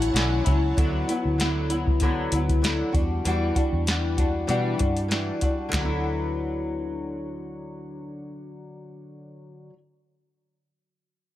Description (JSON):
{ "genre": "indie pop, bedroom pop", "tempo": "97 BPM", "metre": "4/4", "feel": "swing 55% on 16ths", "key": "D major", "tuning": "A4 = 440 Hz", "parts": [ { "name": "flamenco guitar", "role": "accompaniment", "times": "0.0-9.8 s", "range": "D3 to F#4", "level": "-27 LUFS", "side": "left 2 dB", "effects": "analog chorus, vibrato effect" }, { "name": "phased string machine", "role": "sustained chords", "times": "0.0-0.8 s", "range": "E4 to A5", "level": "-38 LUFS", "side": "right 1 dB", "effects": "ensemble chorus, phaser" }, { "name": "vintage muted fingered electric bass", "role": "bass", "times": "0.0-9.7 s", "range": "B1 to B2", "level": "-27 LUFS", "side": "equal", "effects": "none" }, { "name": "soft vintage rhythm box", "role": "drums", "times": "0.0-5.9 s", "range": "handclaps, hi-hat, kick drum, snare drum", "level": "-25 LUFS", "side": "equal", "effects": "none" } ], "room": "light reverb", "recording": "none", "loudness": "-22 LUFS", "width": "side -14 dB against mid", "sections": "0.8-5.7 A section; 5.7-8.2 B section", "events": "none", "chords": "0.0 Dmaj9; 0.8 D69; 2.9 Em9; 5.7 D69" }